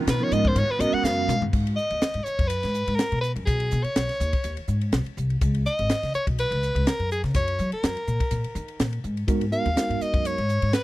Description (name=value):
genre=electric jazz fusion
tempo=124 BPM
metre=4/4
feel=swing 54% on 16ths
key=G# dorian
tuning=A4 = 438 Hz
part: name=mellow tine electric piano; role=accompaniment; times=0.0-1.3, 9.3-10.4 s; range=E#3 to A#4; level=-27 LUFS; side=right 5 dB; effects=medium stereo tremolo
part: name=phased analog pad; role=sustained chords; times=0.0-1.5 s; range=C#3 to A#4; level=-36 LUFS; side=equal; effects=phaser, chorus
part: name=edgy soprano saxophone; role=melody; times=0.1-10.8 s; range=G#4 to F#5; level=-27 LUFS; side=equal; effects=tape echo
part: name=upright bass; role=bass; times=0.1-10.7 s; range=G#1 to F#3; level=-26 LUFS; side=left 1 dB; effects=none
part: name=crisp fusion drum kit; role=drums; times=0.1-10.8 s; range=crash cymbal, hi-hat, kick drum, ride cymbal, snare drum, toms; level=-27 LUFS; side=equal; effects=none
room=little or no reverb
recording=dry, close 1970s-style studio recording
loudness=-22 LUFS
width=side -17 dB against mid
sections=0.0-1.5 A section; 1.5-10.8 B section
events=soprano saxophone solo 0.0-1.5; drum fill 1.0-1.5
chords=0.0 C#13; 0.6 G#m11; 1.5 G#m7; 3.5 B69; 5.4 C#7sus2; 7.3 F#69; 9.3 G#m9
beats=0.08 0.56 1.05 | 1.53 2.02 2.50 2.99 | 3.47 3.96 4.44 4.93 | 5.41 5.90 6.38 6.86 | 7.35 7.83 8.31 8.80 | 9.28 9.76 10.24 10.73